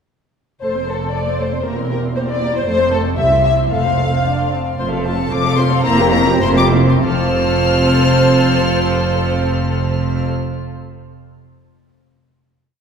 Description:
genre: quick classical-period movement for string orchestra.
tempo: 97-118 BPM.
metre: 2/4.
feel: straight.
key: F major.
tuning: A4 = 441 Hz.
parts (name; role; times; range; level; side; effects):
warm symphonic violin section; melody; 0.6-10.3 s; A5 to F6; -24 LUFS; left 4 dB; none.
rich studio violin section; second line; 0.6-10.3 s; G4 to F5; -19 LUFS; left 2 dB; none.
warm studio viola section; accompaniment; 0.6-10.3 s; A3 to C5; -21 LUFS; right 1 dB; none.
warm chamber cello section; bass; 0.6-10.3 s; C2 to F2; -22 LUFS; equal; none.
warm symphonic double bass section; bass; 0.6-10.3 s; E1 to C2; -19 LUFS; right 2 dB; none.
room: wet concert hall reverb, RT60 2.2 s.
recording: heard from further back in the room.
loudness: -13 LUFS.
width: side -6 dB against mid.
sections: 0.6-4.8 A section; 4.8-7.0 coda; 7.0-9.5 final chord.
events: slowing down 4.3-7.0.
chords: 0.6 F; 1.7 C7/E; 2.7 F; 3.2 C; 3.7 F; 5.9 C7/F; 7.0 F.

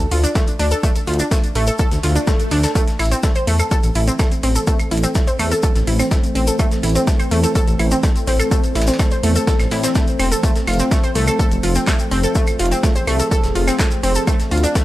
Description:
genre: melodic techno.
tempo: 125 BPM.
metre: 4/4.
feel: straight.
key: A harmonic minor.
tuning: A4 = 442 Hz.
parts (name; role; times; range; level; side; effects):
dark detuned saw bass; bass; 0.0-14.7 s; E1 to A2; -18 LUFS; equal; sidechain pumping.
breakbeat sampler-style drum kit; drums; 0.0-14.8 s; hi-hat, snare drum, tambourine; -32 LUFS; equal; sidechain pumping on perc, high-pass filter on perc, studio reverb, sidechain pumping on hats, high-pass filter on hats, high-pass filter on snare.
techno drum kit; drums; 0.0-14.8 s; claves, handclaps, hi-hat; -27 LUFS; right 2 dB; sidechain pumping on hats, studio reverb, sidechain pumping on perc.
analog pluck; arpeggios; 0.1-14.8 s; A3 to C5; -21 LUFS; equal; chorus, sidechain pumping, tape echo.
tube shaker; percussion; 0.2-14.8 s; none; -28 LUFS; left 3 dB; none.
electronic kick drum; drums; 0.4-14.8 s; none; -17 LUFS; equal; studio reverb.
swell; sound effects; 2.0-2.8 s; none; -28 LUFS; left 2 dB; none.
dark analog pad; sustained chords; 3.6-14.8 s; E3 to D5; -24 LUFS; equal; chorus, phaser, sidechain pumping.
room: little or no reverb.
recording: dry, gritty hardware recording, lossy compression artefacts.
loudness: -15 LUFS.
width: side -16 dB against mid.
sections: 0.0-14.8 A section.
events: swell 2.0-2.8.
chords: 0.0 Dm; 2.8 Am; 10.4 F; 14.3 Dm.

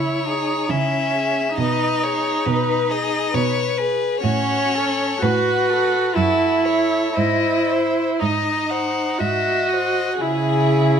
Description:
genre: classical, slow romantic movement for string quartet.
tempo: 56-68 BPM.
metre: 3/4.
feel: rubato.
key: unclear.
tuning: A4 = 440 Hz.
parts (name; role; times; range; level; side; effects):
warm violin; melody; 0.0-11.0 s; E4 to D#5; -26 LUFS; left 11 dB; none.
rich violin; second line; 0.0-11.0 s; G#4 to F#5; -24 LUFS; left 4 dB; none.
rich viola; accompaniment; 0.0-11.0 s; C#4 to F#4; -20 LUFS; right 2 dB; none.
rich cello; bass; 0.0-11.0 s; F#2 to C#3; -24 LUFS; right 4 dB; none.
room: moderate recital hall reverb, RT60 1.5 s.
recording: close, detailed microphones.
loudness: -17 LUFS.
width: side -7 dB against mid.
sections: 0.0-11.0 A section.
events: none.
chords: 0.0 C#m; 1.6 G#m/B; 4.2 F#m/A; 6.2 F#m; 7.2 G#; 10.2 C#m.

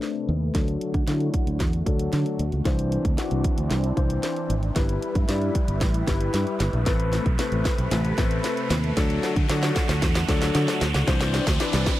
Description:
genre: dance-pop.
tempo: 114 BPM.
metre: 4/4.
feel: straight.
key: unclear.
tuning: A4 = 440 Hz.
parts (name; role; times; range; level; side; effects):
clear grand piano; accompaniment; 0.0-12.0 s; E3 to D5; -29 LUFS; left 4 dB; sidechain pumping, low-pass filter.
lush unison pad; sustained chords; 0.0-12.0 s; C3 to B4; -31 LUFS; right 1 dB; chorus, sidechain pumping, low-pass filter.
house drum kit; drums; 0.0-12.0 s; hi-hat, kick drum, snare drum; -25 LUFS; equal; none.
riser; sound effects; 0.4-12.0 s; none; -35 LUFS; right 1 dB; none.
fingered electric bass; bass; 0.3-11.8 s; G1 to D3; -25 LUFS; equal; sidechain pumping.
room: little or no reverb.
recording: dry, close 1970s-style studio recording.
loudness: -21 LUFS.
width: side -14 dB against mid.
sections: 0.0-12.0 A section.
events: build-up 0.0-12.0; drum fill 0.0-12.0; filter sweep 0.0-12.0; riser 0.4-12.0.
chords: 0.0 Amadd9; 0.6 D; 2.7 Cadd9; 4.8 G6; 6.9 Amadd9; 9.0 D; 11.1 Cadd9.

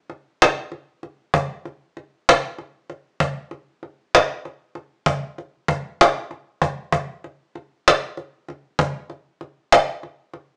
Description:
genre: blues.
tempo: 64 BPM (dotted quarters).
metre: 12/8.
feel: straight.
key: none.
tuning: none.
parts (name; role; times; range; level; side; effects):
cajon; drums; 0.1-10.4 s; none; -16 LUFS; equal; none.
room: wet studio reverb, RT60 0.6 s.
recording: band playing live in one room, small speaker sound.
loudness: -18 LUFS.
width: side -30 dB against mid.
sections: 0.0-10.6 A section.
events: none.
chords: none.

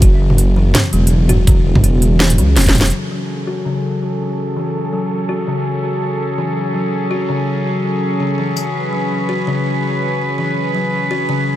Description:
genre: half-time drum and bass.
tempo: 165 BPM.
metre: 4/4.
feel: swing 55% on 16ths, half-time.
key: F# minor.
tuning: A4 = 441 Hz.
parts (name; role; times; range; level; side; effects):
buzzing kalimba; arpeggios; 0.0-11.6 s; C#3 to F#4; -20 LUFS; left 3 dB; low-pass filter, dub echo.
dark detuned saw bass; bass; 0.0-2.9 s; E1 to C#2; -13 LUFS; equal; tube saturation.
drum and bass drum kit; drums; 0.0-2.9, 8.6 s; hi-hat, snare drum, tambourine, toms; -16 LUFS; right 1 dB; none.
electronic kick drum; drums; 0.0-2.7 s; none; -12 LUFS; equal; none.
warm chamber cello section; sustained chords; 2.9-11.6 s; F#3 to B4; -20 LUFS; right 1 dB; sidechain pumping, low-pass filter.
room: light reverb, digital ambience.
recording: none.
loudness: -14 LUFS.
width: side -13 dB against mid.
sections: 0.0-2.9 A section; 2.9-11.6 B section.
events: drop 0.0-2.9; drum fill 2.6-2.9; filter sweep on cello section 2.9-11.6; filter sweep on kalimba 2.9-11.6.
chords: 0.0 F#5; 2.9 F#madd9.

